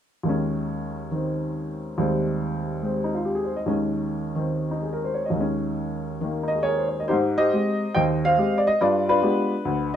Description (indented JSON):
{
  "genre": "solo jazz",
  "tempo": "142 BPM",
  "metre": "4/4",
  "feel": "swing 68% on 8ths, rubato",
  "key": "Ab major",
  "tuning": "A4 = 440 Hz",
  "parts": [
    { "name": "warm upright piano", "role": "solo", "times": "0.2-10.0 s", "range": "D2 to G5", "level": "-22 LUFS", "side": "equal", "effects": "none" }
  ],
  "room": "light reverb",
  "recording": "minimal, uncompressed stereo recording",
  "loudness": "-22 LUFS",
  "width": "side -9 dB against mid",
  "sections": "0.3-7.1 A section; 7.1-10.0 B section",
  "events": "none",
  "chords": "0.3 Eb7sus4; 2.0 Abmaj7/Eb; 3.7 Eb7sus4; 7.1 Abmaj7; 8.8 G7b9",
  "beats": "| 0.27 0.70 1.14 1.56 | 1.99 2.41 2.83 3.25 | 3.67 4.10 4.51 4.93 | 5.36 5.78 6.21 6.65 | 7.09 7.52 7.95 8.38 | 8.80 9.23 9.65"
}